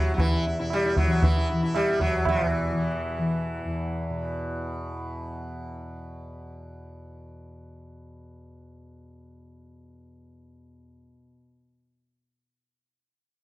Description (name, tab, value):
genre	indian classical, Hindustani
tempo	116 BPM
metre	4/4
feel	straight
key	unclear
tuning	A4 = 440 Hz
part	sitar	melody	0.0-5.8 s	E3 to E4	-28 LUFS	left 1 dB	none
part	tanpura	drone	0.0-11.2 s	E2 to E3	-31 LUFS	left 1 dB	none
part	tabla	percussion	0.2-2.5 s	none	-25 LUFS	right 1 dB	none
room	light reverb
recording	dry, close 1970s-style studio recording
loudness	-24 LUFS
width	side -17 dB against mid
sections	0.0-2.3 A section; 2.3-4.3 B section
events	none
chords	none